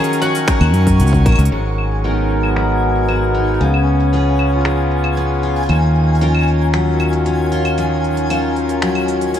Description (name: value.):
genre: folktronica.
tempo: 115 BPM.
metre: 4/4.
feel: straight.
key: Eb minor.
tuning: A4 = 440 Hz.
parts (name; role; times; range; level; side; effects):
mandolin; melody; 0.0-1.2 s; Gb4 to Ab4; -23 LUFS; left 2 dB; ping-pong delay.
accordion; sustained chords; 0.0-9.4 s; Db3 to Ab5; -21 LUFS; equal; low-pass filter.
picked twelve-string acoustic guitar; arpeggios; 0.0-9.4 s; Ab2 to Bb4; -19 LUFS; left 1 dB; vintage 12-bit sampler grit, low-pass filter, ping-pong delay.
organic electronic drum kit; drums; 0.0-9.4 s; cabasa, claves, finger snaps, hi-hat; -24 LUFS; left 1 dB; overdrive, low-pass filter on hats, low-pass filter on perc, low-pass filter on snare, low-pass filter on room.
twinkling granular texture; texture; 0.0-9.4 s; Ab5 to Db6; -27 LUFS; left 1 dB; built-in reverb.
electronic kick drum; drums; 0.5-1.4 s; none; -16 LUFS; equal; overdrive.
fingered electric bass; bass; 0.6-9.4 s; Ab1 to Gb2; -16 LUFS; equal; none.
room: light reverb, digital ambience.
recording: none.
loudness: -13 LUFS.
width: side -10 dB against mid.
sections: 0.0-1.5 A section; 1.5-9.4 B section.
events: filter sweep on accordion 1.5-9.4.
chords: 0.0 Ebm9; 1.5 Abm9; 3.6 Db7; 5.7 Ebm9.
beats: 0.48 1.00 | 1.52 2.04 2.56 3.08 | 3.61 4.13 4.65 5.17 | 5.69 6.21 6.74 7.26 | 7.78 8.30 8.82 9.35.